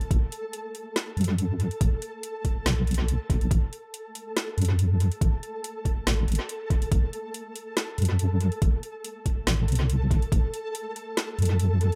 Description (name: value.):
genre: deep dubstep.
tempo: 141 BPM.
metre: 4/4.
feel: swing 53% on 16ths, half-time.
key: A dorian.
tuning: A4 = 440 Hz.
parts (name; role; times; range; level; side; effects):
garage drum kit; drums; 0.0-12.0 s; hi-hat, snare drum; -34 LUFS; equal; analog delay.
flickering grainy texture; texture; 0.0-12.0 s; A4; -39 LUFS; equal; built-in reverb.
deep soft wobble bass; bass; 0.1-11.9 s; G1 to F#2; -26 LUFS; equal; chorus.
electronic kick drum; drums; 0.1-10.4 s; none; -26 LUFS; equal; overdrive.
room: digital ambience.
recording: echo-heavy mix.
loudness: -26 LUFS.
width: mono.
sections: 0.0-12.0 A section.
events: none.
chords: none.